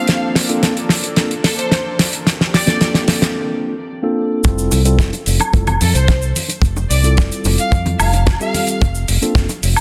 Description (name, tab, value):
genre	nu-disco, nu disco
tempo	110 BPM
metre	4/4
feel	straight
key	F major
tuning	A4 = 440 Hz
part	rich studio violin section	melody	0.0-8.9 s	A4 to F5	-26 LUFS	equal	tape echo
part	mellow tine electric piano	accompaniment	0.0-9.5 s	G3 to C5	-23 LUFS	equal	sidechain pumping, tape echo
part	lush unison pad	sustained chords	0.0-3.3 s	F3 to A4	-30 LUFS	equal	chorus, sidechain pumping
part	damped 70s drum kit	drums	0.1-9.8 s	cabasa, hi-hat, snare drum, woodblock	-20 LUFS	equal	none
part	fingered electric bass	bass	4.4-9.7 s	F1 to F2	-18 LUFS	equal	tube saturation, sidechain pumping
part	kick drum	drums	4.4-9.5 s	none	-16 LUFS	equal	none
part	bongos and congas	percussion	4.4-9.6 s	none	-28 LUFS	equal	none
room	moderate lush hall reverb, RT60 2.4 s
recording	dense, heavily limited modern master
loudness	-16 LUFS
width	mono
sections	0.0-4.4 A section; 4.4-9.8 B section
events	build-up 0.0-4.4; drum fill 0.0-3.4; break 3.4-4.4; drop 4.4-9.8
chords	0.1 Bbmaj9/F; 4.4 Fmaj9; 8.8 Bbmaj9/F